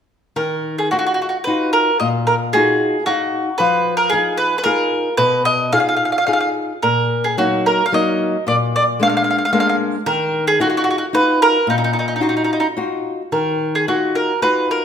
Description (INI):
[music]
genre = italian folk, Italian serenade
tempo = 111 BPM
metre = 3/4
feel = rubato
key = Eb harmonic minor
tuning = A4 = 444 Hz
[part]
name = mandolin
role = melody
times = 0.4-14.8 s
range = Eb4 to F5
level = -16 LUFS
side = right 1 dB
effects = none
[part]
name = nylon-string guitar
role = accompaniment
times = 0.4-14.8 s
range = Bb2 to F5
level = -20 LUFS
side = left 3 dB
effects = none
[sound]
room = moderate recital hall reverb, RT60 1.6 s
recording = minimal, uncompressed stereo recording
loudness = -15 LUFS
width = side -8 dB against mid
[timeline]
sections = 0.4-13.3 A section; 13.3-14.8 A section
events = none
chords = 0.4 Ebmadd9; 3.6 Fm7b5; 6.8 Ebm/Bb; 8.5 Bb7; 10.1 Ebmadd9